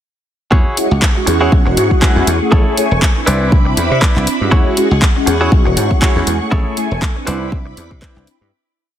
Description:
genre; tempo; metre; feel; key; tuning
filtered disco house; 120 BPM; 4/4; swing 56% on 16ths; E major; A4 = 440 Hz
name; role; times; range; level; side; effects
phased string machine; sustained chords; 0.5-8.5 s; A3 to D6; -22 LUFS; equal; ensemble chorus, phaser, sidechain pumping
direct-recorded clean electric guitar; riff; 0.5-8.3 s; E4 to D5; -20 LUFS; right 1 dB; vintage 12-bit sampler grit, sidechain pumping
dry thumbed slap bass; bass; 0.5-8.5 s; E1 to C3; -17 LUFS; equal; sidechain pumping
electronic kick drum; drums; 0.5-8.1 s; none; -13 LUFS; equal; studio reverb
mellow synth brass; accompaniment; 0.8-8.5 s; G#3 to B5; -18 LUFS; equal; chorus, phaser, sidechain pumping
house drum kit; drums; 0.8-8.4 s; handclaps, hi-hat; -20 LUFS; equal; sidechain pumping on hats, studio reverb
room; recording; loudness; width
little or no reverb; none; -11 LUFS; side -10 dB against mid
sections
0.5-8.5 drop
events
drop 0.5-8.5; fade-out 5.9-8.5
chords
0.5 E69; 2.5 Amaj7; 3.3 Cmaj9; 4.5 E69; 6.5 Amaj7; 7.3 Cmaj9

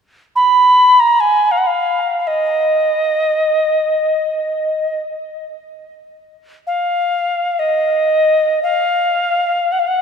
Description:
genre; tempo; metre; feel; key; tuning
world meditative; free time; none; none; unclear; A4 = 441 Hz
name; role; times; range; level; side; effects
bright reedy alto ocarina; solo; 0.4-10.0 s; D#5 to B5; -13 LUFS; equal; ping-pong delay
room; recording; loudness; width
wet concert hall reverb, RT60 2.4 s; none; -13 LUFS; side -7 dB against mid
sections
0.0-10.0 A section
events
none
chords
none

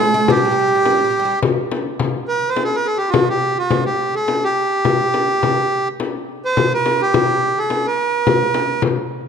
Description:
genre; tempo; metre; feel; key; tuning
Arabic maqam ensemble; 105 BPM; 3/4; straight; G maqam huzam; A4 = 440 Hz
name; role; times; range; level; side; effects
accordion; melody; 0.0-8.8 s; F#4-50c to C5-40c; -17 LUFS; right 2 dB; none
melodica; second line; 0.0-1.4 s; G4 to Ab4+50c; -23 LUFS; right 6 dB; none
oud; second line; 0.0-1.3 s; G3 to Ab3+50c; -23 LUFS; right 6 dB; none
frame drum; percussion; 0.0-9.0 s; none; -20 LUFS; left 5 dB; none
room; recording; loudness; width
moderate scoring stage reverb, RT60 2.1 s; dark, warm production; -15 LUFS; side -7 dB against mid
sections
0.0-2.0 A section; 2.0-9.3 B section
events
none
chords
none

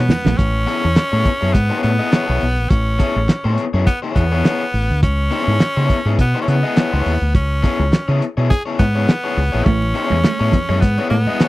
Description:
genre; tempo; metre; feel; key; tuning
funk; 104 BPM; 4/4; swing 56% on 16ths; unclear; A4 = 440 Hz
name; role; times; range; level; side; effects
raspy tenor saxophone; melody; 0.0-11.5 s; B3 to G#4; -22 LUFS; equal; none
fingered electric bass; bass; 0.0-11.3 s; A1 to C#3; -17 LUFS; equal; none
semi-hollow electric guitar; riff; 0.1-0.4, 9.7-11.2 s; G#3 to A3; -26 LUFS; right 7 dB; none
cloth-damped thuddy drum kit; drums; 0.1-11.5 s; handclaps, hi-hat, kick drum, snare drum; -15 LUFS; equal; none
congas; percussion; 0.1-0.4, 9.8-11.4 s; none; -26 LUFS; right 5 dB; none
overdriven electric guitar; accompaniment; 0.7-11.5 s; B3 to D#5; -22 LUFS; left 4 dB; none
room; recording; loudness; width
little or no reverb; dry, close 1970s-style studio recording; -14 LUFS; side -18 dB against mid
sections
0.4-11.5 A section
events
drum fill 0.0-0.4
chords
0.4 Amaj9; 5.0 C#m7; 9.7 Amaj9

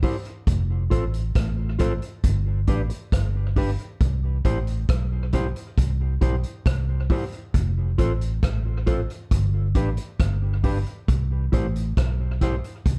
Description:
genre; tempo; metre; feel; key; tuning
roots reggae; 68 BPM; 4/4; straight; C major; A4 = 440 Hz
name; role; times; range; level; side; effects
mellow electric guitar; accompaniment; 0.0-12.6 s; D4 to C5; -33 LUFS; equal; spring reverb, tape echo
vintage drum kit; drums; 0.0-13.0 s; hi-hat, kick drum, rim click; -26 LUFS; equal; none
vintage muted fingered electric bass; bass; 0.5-13.0 s; F1 to C2; -26 LUFS; equal; none
room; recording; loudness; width
little or no reverb; dark, warm production; -24 LUFS; mono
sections
0.0-4.0 A section; 4.0-13.0 A section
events
none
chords
0.5 F; 2.2 G; 4.0 C; 7.5 F; 9.3 G; 11.1 C

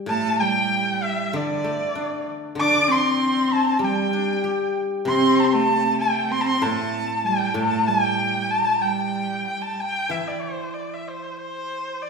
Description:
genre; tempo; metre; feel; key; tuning
chinese traditional, Chinese chamber ensemble; 96 BPM; 2/4; rubato; G zhi mode; A4 = 444 Hz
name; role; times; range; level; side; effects
guzheng; accompaniment; 0.0-12.0 s; A2 to G4; -28 LUFS; left 3 dB; none
clear erhu; melody; 0.1-12.1 s; C5 to D6; -22 LUFS; equal; none
rich cello; second line; 0.1-9.7 s; D3 to D4; -25 LUFS; right 2 dB; none
room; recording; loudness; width
wet recital hall reverb, RT60 1.6 s; recorded in a church or concert hall; -20 LUFS; side -5 dB against mid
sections
0.1-10.1 A section; 10.1-12.1 B section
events
none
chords
none

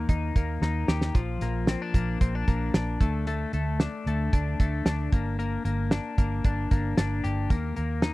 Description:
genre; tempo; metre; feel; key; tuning
jangly indie pop; 113 BPM; 4/4; straight; unclear; A4 = 440 Hz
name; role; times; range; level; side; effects
twelve-string electric guitar; arpeggios; 0.0-8.1 s; Eb3 to G4; -31 LUFS; left 4 dB; tape echo
vintage muted fingered electric bass; bass; 0.0-8.1 s; G1 to Eb2; -28 LUFS; equal; none
cloth-damped thuddy drum kit; drums; 0.1-8.1 s; hi-hat, kick drum, snare drum; -23 LUFS; right 1 dB; none
room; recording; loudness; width
little or no reverb; dry, close 1970s-style studio recording; -24 LUFS; side -19 dB against mid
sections
0.0-8.1 A section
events
drum fill 0.6-1.1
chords
0.0 Eb; 1.1 Bb; 3.0 D5; 5.1 Gm; 7.5 Eb

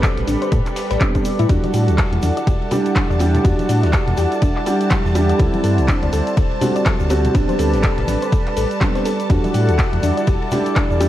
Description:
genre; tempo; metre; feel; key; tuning
deep house; 123 BPM; 4/4; swing 59% on 16ths; E minor; A4 = 442 Hz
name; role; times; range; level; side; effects
warm analog pad; sustained chords; 0.0-11.1 s; G3 to F#5; -25 LUFS; right 2 dB; chorus, sidechain pumping
soft round pluck; arpeggios; 0.0-11.1 s; D4 to D5; -26 LUFS; left 3 dB; chorus, sidechain pumping, analog delay
felt-muted upright piano; stabs; 0.0-11.1 s; G3 to G4; -22 LUFS; right 2 dB; sidechain pumping, analog delay
sub bass with octave; bass; 0.0-11.1 s; D1 to A2; -19 LUFS; equal; none
electronic kick drum; drums; 0.0-10.9 s; none; -18 LUFS; equal; none
huge arena drum kit; drums; 0.0-11.1 s; ride cymbal, snare drum; -38 LUFS; left 2 dB; none
punchy analog drum machine; drums; 0.0-11.1 s; handclaps, hi-hat, ride cymbal; -28 LUFS; equal; none
egg shaker; percussion; 0.0-11.1 s; none; -44 LUFS; right 3 dB; none
granular cloud pad; texture; 0.0-11.1 s; G4 to F#5; -29 LUFS; left 1 dB; built-in reverb, sidechain pumping
string machine, violins; texture; 1.5-11.1 s; A5; -31 LUFS; equal; ensemble chorus, sidechain pumping
congas; percussion; 1.6-10.9 s; none; -28 LUFS; left 3 dB; none
room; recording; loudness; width
light reverb, studio reverb; cassette tape; -15 LUFS; side -13 dB against mid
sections
0.0-11.1 A section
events
none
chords
0.0 Am11; 1.5 Em9; 5.4 D9sus4; 7.3 Am11; 9.3 Em9

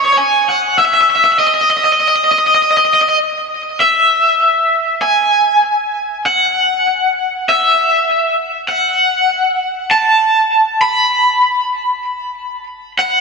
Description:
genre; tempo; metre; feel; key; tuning
rock; 98 BPM; 4/4; straight; E major; A4 = 440 Hz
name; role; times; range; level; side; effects
raw garage guitar; solo; 0.0-13.2 s; C#5 to B5; -11 LUFS; equal; overdrive, tremolo, slapback echo, digital delay
room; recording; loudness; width
wet lush hall reverb, RT60 2.4 s; big arena sound, faint mains hum; -11 LUFS; side -4 dB against mid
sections
0.0-3.8 A section; 3.8-13.2 B section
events
none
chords
none

